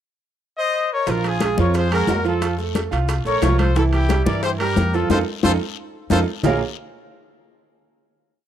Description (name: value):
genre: latin, salsa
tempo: 179 BPM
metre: 4/4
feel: straight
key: Bb harmonic minor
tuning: A4 = 439 Hz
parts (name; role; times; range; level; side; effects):
- bright trumpet section; melody; 0.6-6.6 s; E4 to Eb5; -23 LUFS; left 4 dB; none
- bright concert grand piano; accompaniment; 1.1-6.6 s; E3 to F5; -23 LUFS; right 8 dB; none
- upright bass; bass; 1.1-6.6 s; Bb1 to G2; -21 LUFS; equal; none
- bongos; percussion; 1.1-6.5 s; none; -27 LUFS; left 8 dB; none
- congas; percussion; 1.1-6.5 s; none; -25 LUFS; left 3 dB; none
- guiro; percussion; 1.1-6.5 s; none; -38 LUFS; left 16 dB; none
- maracas; percussion; 1.1-6.5 s; none; -41 LUFS; right 9 dB; none
- timbales; percussion; 1.1-6.5 s; none; -30 LUFS; right 6 dB; none
room: small room reverb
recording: dry, close 1970s-style studio recording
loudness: -17 LUFS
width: side -10 dB against mid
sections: 0.0-1.1 pickup bar; 1.1-6.4 verse; 6.4-7.8 final chord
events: band accent 5.1-6.4; drum fill 5.6-6.4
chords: 0.0 N.C.; 1.1 Bb5; 2.4 F; 3.8 C7; 5.1 F7; 6.4 Bbm7